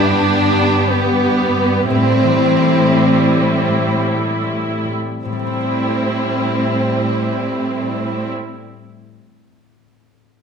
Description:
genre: cinematic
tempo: 48-65 BPM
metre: 3/4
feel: rubato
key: A minor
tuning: A4 = 440 Hz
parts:
  - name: warm symphonic violin section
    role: second line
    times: 0.0-8.3 s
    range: B3 to D4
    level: -18 LUFS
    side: equal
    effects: none
  - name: clear symphonic viola section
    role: accompaniment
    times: 0.0-8.3 s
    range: G3 to G4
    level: -20 LUFS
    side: right 2 dB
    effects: none
  - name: concert harp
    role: arpeggios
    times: 0.0-9.2 s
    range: G2 to C5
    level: -23 LUFS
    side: left 7 dB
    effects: none
  - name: rich studio cello section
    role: bass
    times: 0.0-8.3 s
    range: G2 to A2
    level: -20 LUFS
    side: right 2 dB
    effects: none
room: wet recital hall reverb, RT60 1.5 s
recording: none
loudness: -14 LUFS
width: side -6 dB against mid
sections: 0.0-5.3 A section; 5.3-8.9 B section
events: slowing down 0.0-5.3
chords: 0.0 G; 1.9 Am7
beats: 0.92 | 1.90 2.91 4.03 | 5.25 6.47 7.69

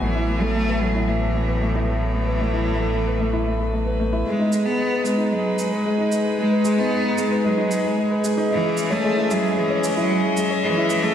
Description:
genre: piano and strings electronica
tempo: 113 BPM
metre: 4/4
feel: straight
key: G# phrygian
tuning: A4 = 445 Hz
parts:
  - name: bright cello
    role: melody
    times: 0.0-11.1 s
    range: E3 to B3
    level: -23 LUFS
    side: equal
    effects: tape echo
  - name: rich string quartet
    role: sustained chords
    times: 0.0-11.1 s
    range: A2 to G#5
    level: -27 LUFS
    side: left 1 dB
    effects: none
  - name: dark upright piano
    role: riff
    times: 0.0-11.1 s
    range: G#3 to C#5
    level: -23 LUFS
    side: left 1 dB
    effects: tape echo
  - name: round analog bass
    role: bass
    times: 0.0-4.2 s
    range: A1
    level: -24 LUFS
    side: equal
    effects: none
  - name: shaker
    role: drums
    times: 4.5-11.0 s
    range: none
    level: -36 LUFS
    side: right 4 dB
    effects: none
room: wet lush hall reverb, RT60 2.1 s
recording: dreamy mix soaked in reverb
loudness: -19 LUFS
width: side -9 dB against mid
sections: 0.0-4.3 A section; 4.3-11.1 B section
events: build-up 4.3-11.1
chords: 0.0 Asus2; 4.3 G#m; 8.5 C#m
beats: | 0.02 0.55 1.08 1.61 | 2.14 2.67 3.20 3.73 | 4.26 4.80 5.33 5.86 | 6.39 6.92 7.45 7.98 | 8.51 9.04 9.57 10.11 | 10.64

